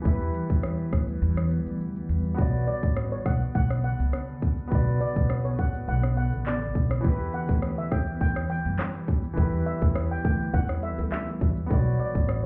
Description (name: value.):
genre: dancehall.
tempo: 103 BPM.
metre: 4/4.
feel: straight.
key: B minor.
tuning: A4 = 440 Hz.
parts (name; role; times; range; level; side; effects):
clear concert grand piano; accompaniment; 0.0-12.5 s; E3 to D5; -36 LUFS; equal; none.
granular cloud pad; sustained chords; 0.0-12.5 s; C#3 to B3; -38 LUFS; equal; built-in reverb, sidechain pumping.
upright bass; bass; 0.1-12.4 s; A1 to F#2; -30 LUFS; equal; none.
island pop drum kit; drums; 0.1-12.4 s; handclaps, hi-hat, kick drum, rim click, shaker; -28 LUFS; equal; none.
steel pan; melody; 2.7-12.5 s; C#5 to G5; -37 LUFS; equal; delay.
bongos; percussion; 7.0-11.8 s; none; -43 LUFS; equal; none.
room: studio reverb.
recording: heard muffled through a wall, club reverb, EQ.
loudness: -26 LUFS.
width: mono.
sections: 0.0-2.4 A section; 2.4-11.7 B section.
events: kick muted 1.2-2.4.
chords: 0.0 Em; 2.4 Bmadd9; 7.0 Em; 11.7 Bmadd9.